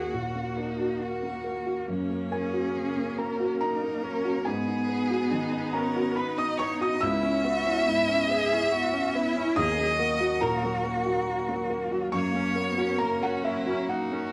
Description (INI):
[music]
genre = neoclassical piano and strings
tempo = 70 BPM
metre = 3/4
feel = rubato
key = unclear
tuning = A4 = 441 Hz
[part]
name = rich violin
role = melody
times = 0.0-14.3 s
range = E4 to E5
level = -32 LUFS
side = equal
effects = none
[part]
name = rich cello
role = second line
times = 0.0-14.3 s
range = A#3 to G#4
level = -35 LUFS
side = equal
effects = none
[part]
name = felt-muted upright piano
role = accompaniment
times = 0.0-14.3 s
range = C#2 to E6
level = -31 LUFS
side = equal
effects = none
[part]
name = warm viola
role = accompaniment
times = 0.0-14.3 s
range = F#3 to C#4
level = -39 LUFS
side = equal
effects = none
[part]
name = airy breathy pad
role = sustained chords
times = 0.0-14.3 s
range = F#3 to A#4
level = -40 LUFS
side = equal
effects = none
[sound]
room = wet studio ambience, RT60 0.5 s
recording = band playing live in one room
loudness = -27 LUFS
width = mono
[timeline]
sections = 0.0-14.3 A section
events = none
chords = 0.0 D#m; 1.9 F#; 4.5 G#m7; 7.0 C#m7; 9.6 D#m; 12.1 F#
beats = 0.13 1.01 | 1.88 2.75 3.61 | 4.46 5.31 6.17 | 7.02 7.87 8.71 | 9.56 10.41 11.27 | 12.13 12.99 13.88